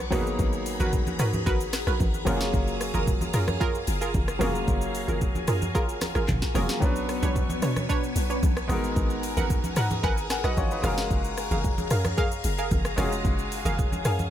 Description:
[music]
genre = amapiano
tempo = 112 BPM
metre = 4/4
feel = straight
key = F# major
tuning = A4 = 441 Hz
[part]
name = clear grand piano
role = accompaniment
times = 0.0-14.3 s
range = F#3 to A#5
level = -31 LUFS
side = left 1 dB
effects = none
[part]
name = phased string machine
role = sustained chords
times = 0.0-14.3 s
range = B3 to D6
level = -34 LUFS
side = left 1 dB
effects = ensemble chorus, phaser, sidechain pumping
[part]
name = hollow log drum bass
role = bass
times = 0.0-14.3 s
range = E#1 to B2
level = -29 LUFS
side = equal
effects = none
[part]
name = analog pluck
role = stabs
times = 0.1-14.1 s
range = D4 to F#5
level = -32 LUFS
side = right 3 dB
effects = chorus, ping-pong delay
[part]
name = afro-pop drum kit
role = drums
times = 0.1-14.3 s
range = handclaps, hi-hat, kick drum, rim click, shaker, snare drum, toms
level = -29 LUFS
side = equal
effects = none
[part]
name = congas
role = percussion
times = 0.1-14.3 s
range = none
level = -34 LUFS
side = right 2 dB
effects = none
[sound]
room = little or no reverb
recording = none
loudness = -23 LUFS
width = side -11 dB against mid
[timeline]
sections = 0.0-14.3 A section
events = grand piano fill 9.5-11.1, 13.8-14.3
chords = 0.1 G#m9; 2.3 F#maj9; 6.8 Bmadd9; 8.7 G#m9; 10.8 F#maj9

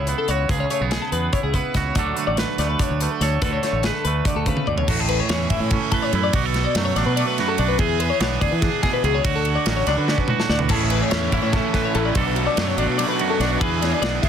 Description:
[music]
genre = math rock and midwest emo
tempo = 289 BPM (eighths)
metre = 7/8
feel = straight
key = A major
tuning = A4 = 444 Hz
[part]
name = twangy electric guitar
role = accompaniment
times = 0.0-14.3 s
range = F#2 to B4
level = -24 LUFS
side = right 10 dB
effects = none
[part]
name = twelve-string electric guitar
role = arpeggios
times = 0.0-14.3 s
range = G#4 to E5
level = -25 LUFS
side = left 8 dB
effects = analog chorus
[part]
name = growling fingered electric bass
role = bass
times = 0.0-14.3 s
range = G#1 to E3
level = -24 LUFS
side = equal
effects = overdrive
[part]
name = modern studio drum kit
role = drums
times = 0.1-14.3 s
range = crash cymbal, hi-hat, kick drum, ride cymbal, snare drum, toms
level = -24 LUFS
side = equal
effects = none
[part]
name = crunchy overdriven guitar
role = riff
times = 10.7-14.3 s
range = A2 to G#4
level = -25 LUFS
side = left 1 dB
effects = none
[sound]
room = light reverb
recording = dense, heavily limited modern master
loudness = -18 LUFS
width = side -8 dB against mid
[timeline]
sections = 0.0-4.9 A section; 4.9-14.3 B section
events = drum fill 4.6-4.9, 10.1-10.7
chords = 0.0 C#m7; 2.0 Bm7; 4.9 Amaj7; 6.3 Bm7; 7.8 E7; 9.2 Dmaj7; 10.7 Amaj7; 12.2 Bm7; 13.6 E7

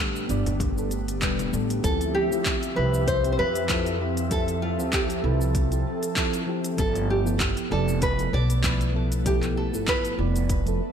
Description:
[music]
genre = sunset chillout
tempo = 97 BPM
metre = 4/4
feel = swing 55% on 16ths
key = D dorian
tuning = A4 = 440 Hz
[part]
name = nylon-string guitar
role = melody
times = 0.0-10.8 s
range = F4 to D5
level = -28 LUFS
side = right 1 dB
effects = tape echo, slapback echo
[part]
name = mellow FM electric piano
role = accompaniment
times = 0.0-10.8 s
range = F3 to D5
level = -30 LUFS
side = moving between left 5 dB and right 6 dB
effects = chorus, phaser, auto-pan, tape echo
[part]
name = airy breathy pad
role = sustained chords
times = 0.0-10.9 s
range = D3 to E5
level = -31 LUFS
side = equal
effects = chorus
[part]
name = upright bass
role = bass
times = 0.0-10.8 s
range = E1 to F2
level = -27 LUFS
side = equal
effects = none
[part]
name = deep house drum kit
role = drums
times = 0.2-10.8 s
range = handclaps, hi-hat, shaker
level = -31 LUFS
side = equal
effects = small room reverb, slapback echo
[part]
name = congas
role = percussion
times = 0.5-1.5 s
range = none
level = -37 LUFS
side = left 2 dB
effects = none
[part]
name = electronic kick drum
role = drums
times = 0.6-10.6 s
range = none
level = -28 LUFS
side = equal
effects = small room reverb
[sound]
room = moderate lush hall reverb, RT60 1.7 s, studio reverb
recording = big arena sound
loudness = -22 LUFS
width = side -8 dB against mid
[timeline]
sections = 0.0-1.8 A section; 1.8-10.9 B section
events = none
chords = 0.0 A9sus4; 1.8 Dm11; 6.8 G13

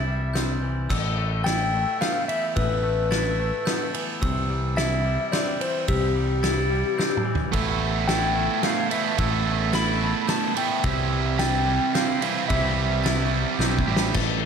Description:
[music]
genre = post-rock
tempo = 109 BPM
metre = 3/4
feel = straight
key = A minor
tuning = A4 = 439 Hz
[part]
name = clean lap steel guitar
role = melody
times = 0.0-13.6 s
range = G4 to B5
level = -27 LUFS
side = left 2 dB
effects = slapback echo
[part]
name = glockenspiel with brass mallets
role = arpeggios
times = 0.0-14.5 s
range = E6 to A6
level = -34 LUFS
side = right 3 dB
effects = slapback echo
[part]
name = twangy electric guitar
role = arpeggios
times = 0.0-14.5 s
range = A2 to E4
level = -31 LUFS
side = left 4 dB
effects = spring reverb, slapback echo
[part]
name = modern bright picked electric bass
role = bass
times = 0.0-14.5 s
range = A1 to C2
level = -26 LUFS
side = equal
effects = none
[part]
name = loose indie drum kit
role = drums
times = 0.4-14.3 s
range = crash cymbal, hi-hat, kick drum, ride cymbal, snare drum, splash cymbal, toms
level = -28 LUFS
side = equal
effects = none
[part]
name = distorted electric guitar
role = riff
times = 7.5-14.2 s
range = C3 to A4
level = -25 LUFS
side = right 10 dB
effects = overdrive
[part]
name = distorted electric guitar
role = riff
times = 14.1-14.5 s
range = A2 to A3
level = -28 LUFS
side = left 8 dB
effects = distortion, slapback echo
[sound]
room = moderate concert hall reverb, RT60 2.1 s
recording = big arena sound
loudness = -21 LUFS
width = side -6 dB against mid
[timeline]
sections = 0.9-14.2 A section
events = drum fill 7.0-7.5, 13.6-14.2, 14.2-14.5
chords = 0.0 C; 0.9 Asus2; 4.2 C; 7.5 Asus2; 10.8 C

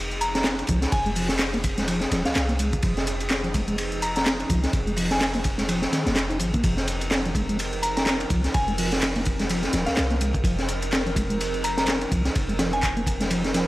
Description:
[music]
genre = breakbeat, breaks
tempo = 126 BPM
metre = 4/4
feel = swing 57% on 16ths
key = F minor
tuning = A4 = 440 Hz
[part]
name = warbly tape-like pad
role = sustained chords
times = 0.0-13.7 s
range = F3 to Bb4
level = -32 LUFS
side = equal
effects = chorus, built-in reverb, phaser, vintage 12-bit sampler grit, sidechain pumping
[part]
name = warm 808-style bass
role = bass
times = 0.0-13.7 s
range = Eb1 to C2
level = -29 LUFS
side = equal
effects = none
[part]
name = punchy analog drum machine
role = drums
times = 0.1-13.7 s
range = handclaps, hi-hat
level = -32 LUFS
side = equal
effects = none
[part]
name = soft synth bell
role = melody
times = 0.2-12.9 s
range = F5 to Bb5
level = -30 LUFS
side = equal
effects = chorus, old record sound, vintage 12-bit sampler grit, dub echo
[part]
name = crunchy breakbeat drum kit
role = drums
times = 0.2-13.7 s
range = hi-hat, kick drum, ride cymbal, snare drum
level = -25 LUFS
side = equal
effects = none
[part]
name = mellow tonewheel organ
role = riff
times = 0.4-13.7 s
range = Eb3 to Eb4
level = -29 LUFS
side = equal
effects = none
[sound]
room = small room ambience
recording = vinyl crackle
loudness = -21 LUFS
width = side -18 dB against mid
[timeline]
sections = 0.0-13.7 A section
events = none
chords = 0.0 Fm7

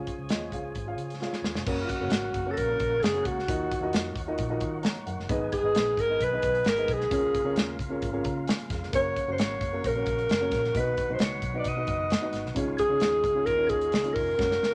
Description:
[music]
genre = uptempo 1960s-style soul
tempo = 132 BPM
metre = 4/4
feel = straight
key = F# major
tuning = A4 = 441 Hz
[part]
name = dark upright piano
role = accompaniment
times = 0.0-14.7 s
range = G#2 to A#5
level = -36 LUFS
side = equal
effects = none
[part]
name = overdriven tonewheel organ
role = sustained chords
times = 0.0-14.7 s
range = C#3 to G#4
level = -43 LUFS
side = equal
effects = slow rotary speaker
[part]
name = natural country drum kit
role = drums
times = 0.1-14.7 s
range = crash cymbal, hi-hat, kick drum, snare drum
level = -34 LUFS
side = equal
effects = none
[part]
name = vintage muted fingered electric bass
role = bass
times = 0.2-14.6 s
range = E#1 to D#3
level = -39 LUFS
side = equal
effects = none
[part]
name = mellow alto saxophone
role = melody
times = 1.8-14.7 s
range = E#4 to D#5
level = -29 LUFS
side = equal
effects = none
[part]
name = glockenspiel with rubber mallets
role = second line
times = 1.8-14.7 s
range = E#6 to D#7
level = -45 LUFS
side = equal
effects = none
[sound]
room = moderate studio reverb, RT60 0.9 s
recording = none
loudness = -28 LUFS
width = mono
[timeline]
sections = 0.0-1.7 A section; 1.7-14.7 B section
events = drum fill 1.2-1.7, 14.4-14.7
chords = 0.0 C#; 1.7 F#; 3.5 D#madd9; 5.3 G#m; 7.1 C#6; 8.9 F#; 10.8 B; 12.6 C#add9

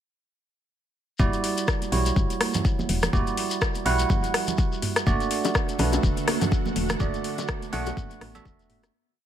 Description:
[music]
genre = afro house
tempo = 124 BPM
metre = 4/4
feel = swing 57% on 16ths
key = E dorian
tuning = A4 = 438 Hz
[part]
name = bell-like tine electric piano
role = stabs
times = 1.2-8.9 s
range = G3 to F#5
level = -28 LUFS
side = right 5 dB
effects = lush chorus, sidechain pumping, ping-pong delay
[part]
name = woody FM bass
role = bass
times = 1.2-8.9 s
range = E1 to B1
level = -27 LUFS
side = left 1 dB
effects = sidechain pumping
[part]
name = afro-pop drum kit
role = drums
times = 1.2-8.9 s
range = hi-hat, rim click, toms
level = -29 LUFS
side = left 2 dB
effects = none
[part]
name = electronic kick drum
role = drums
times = 1.2-8.6 s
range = none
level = -25 LUFS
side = left 1 dB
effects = none
[part]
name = congas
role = percussion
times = 1.2-8.8 s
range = none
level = -33 LUFS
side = right 4 dB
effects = none
[part]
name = shekere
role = percussion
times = 1.2-8.9 s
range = none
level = -36 LUFS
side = left 5 dB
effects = none
[part]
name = ethereal airy pad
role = sustained chords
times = 5.4-8.9 s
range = D3 to F#4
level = -34 LUFS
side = right 2 dB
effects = ensemble chorus, built-in reverb, sidechain pumping
[part]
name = bongos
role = percussion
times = 5.4-8.9 s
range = none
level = -30 LUFS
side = left 7 dB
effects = none
[sound]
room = digital ambience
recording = none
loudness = -22 LUFS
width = side -10 dB against mid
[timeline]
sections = 1.2-8.9 drop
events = drop 1.2-8.9; fade-out 6.4-8.9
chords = 1.2 Em9; 5.1 D/E

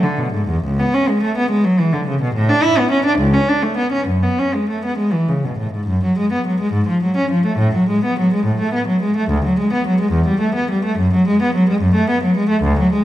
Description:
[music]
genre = classical, baroque-style suite movement for unaccompanied cello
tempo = 64-75 BPM (dotted quarters)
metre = 6/8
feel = rubato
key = F# minor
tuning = A4 = 440 Hz
[part]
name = rich cello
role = solo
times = 0.0-13.0 s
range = C#2 to E4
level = -14 LUFS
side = equal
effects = none
[sound]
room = wet recital hall reverb, RT60 1.7 s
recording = dark, warm production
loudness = -15 LUFS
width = side -14 dB against mid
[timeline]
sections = 0.0-5.9 A section; 5.9-13.0 B section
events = none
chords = none

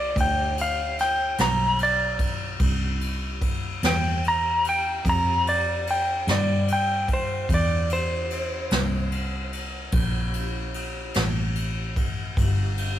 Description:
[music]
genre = slow blues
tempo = 49 BPM (dotted quarters)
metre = 12/8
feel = straight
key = unclear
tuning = A4 = 441 Hz
[part]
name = clean lap steel guitar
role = melody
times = 0.0-9.5 s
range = C5 to Bb5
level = -24 LUFS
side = equal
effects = digital delay
[part]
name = vintage muted fingered electric bass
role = bass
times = 0.0-13.0 s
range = G1 to G2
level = -27 LUFS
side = equal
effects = none
[part]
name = jazz brush drum kit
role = drums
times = 0.2-13.0 s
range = kick drum, ride cymbal, snare drum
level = -27 LUFS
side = equal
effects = none
[sound]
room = moderate stone room reverb, RT60 1.0 s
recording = rough rehearsal-room recording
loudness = -22 LUFS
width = side -12 dB against mid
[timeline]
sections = 0.0-13.0 A section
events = electric slide guitar solo 0.0-13.0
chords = 0.0 G; 2.6 C7

